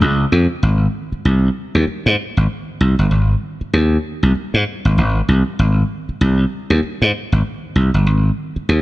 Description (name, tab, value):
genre	funk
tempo	97 BPM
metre	4/4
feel	swing 60% on 16ths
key	Ab major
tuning	A4 = 439 Hz
part	slap bass	solo	0.0-8.8 s	G1 to Ab2	-14 LUFS	equal	none
room	light reverb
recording	none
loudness	-14 LUFS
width	side -17 dB against mid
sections	0.6-8.8 A section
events	none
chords	none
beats	0.01 | 0.63 1.25 1.87 2.49 | 3.11 3.73 4.35 4.97 | 5.59 6.21 6.83 7.45 | 8.06 8.68